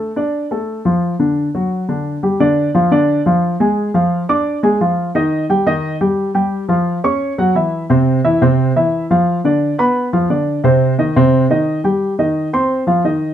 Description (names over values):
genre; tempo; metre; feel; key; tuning
jazz; 175 BPM; 4/4; straight; unclear; A4 = 440 Hz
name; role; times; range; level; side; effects
dark grand piano; solo; 0.0-13.3 s; C3 to D6; -13 LUFS; equal; none
room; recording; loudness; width
moderate club reverb, RT60 0.8 s; close, detailed microphones; -13 LUFS; side -10 dB against mid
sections
0.0-2.4 A section; 2.4-13.3 B section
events
none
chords
0.0 Dm; 1.7 D; 2.4 Ddim; 3.8 Fm6; 5.1 Eb; 6.5 Fsus2; 7.2 F#5; 7.9 F5; 9.3 Dm6; 10.6 Cm; 12.0 Eb6; 12.7 F5